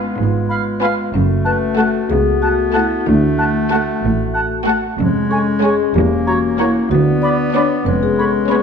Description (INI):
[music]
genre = cinematic, playful, whimsical film cue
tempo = 62 BPM (dotted quarters)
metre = 6/8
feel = straight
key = F# minor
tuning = A4 = 440 Hz
[part]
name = marimba with soft mallets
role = melody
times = 0.0-8.6 s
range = C#4 to D5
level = -20 LUFS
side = left 6 dB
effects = none
[part]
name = rich studio violin section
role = melody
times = 0.0-8.6 s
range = C#5 to A5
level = -33 LUFS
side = left 2 dB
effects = none
[part]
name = bright clarinet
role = second line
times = 0.0-8.6 s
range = G#3 to B3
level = -22 LUFS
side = left 1 dB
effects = none
[part]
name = rich studio violin section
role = second line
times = 0.0-8.6 s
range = C#4 to F#4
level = -26 LUFS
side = left 3 dB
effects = none
[part]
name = rich studio viola section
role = accompaniment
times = 0.0-8.6 s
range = G#3 to B3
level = -23 LUFS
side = right 2 dB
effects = none
[part]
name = mellow French horn section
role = sustained chords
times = 0.0-8.6 s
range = G#3 to F#4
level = -22 LUFS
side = left 4 dB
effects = none
[part]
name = clear studio double bass section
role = bass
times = 0.2-8.6 s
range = E1 to D2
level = -21 LUFS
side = right 4 dB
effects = none
[part]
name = rich studio cello section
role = bass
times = 0.2-8.6 s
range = C#2 to A2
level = -22 LUFS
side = right 4 dB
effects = none
[part]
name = concert flute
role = second line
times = 0.5-8.6 s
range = G#5 to B5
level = -26 LUFS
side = left 1 dB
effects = none
[part]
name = warm oboe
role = second line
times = 0.5-8.6 s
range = C#5 to F#5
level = -24 LUFS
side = right 2 dB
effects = none
[sound]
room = moderate recital hall reverb, RT60 1.8 s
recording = none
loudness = -14 LUFS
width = side -6 dB against mid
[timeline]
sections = 0.0-8.6 A section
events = none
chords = 0.0 C#7/G#; 1.1 F#m; 3.1 D; 5.0 C#/E#; 5.9 F#7/E; 6.9 Bm/D; 7.9 C#7/E#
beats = 0.18 | 1.14 2.11 | 3.07 4.03 | 4.99 5.95 | 6.91 7.86